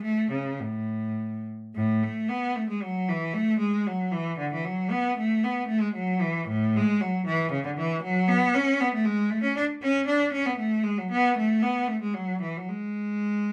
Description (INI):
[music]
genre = classical, baroque-style suite movement for unaccompanied cello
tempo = 103-120 BPM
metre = 3/4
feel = rubato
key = A major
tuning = A4 = 439 Hz
[part]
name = clear cello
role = solo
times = 0.0-13.5 s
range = A2 to D4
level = -26 LUFS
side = equal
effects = none
[sound]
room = light reverb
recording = close, detailed microphones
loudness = -26 LUFS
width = mono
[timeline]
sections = 0.0-1.7 A section; 1.7-13.5 B section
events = none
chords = none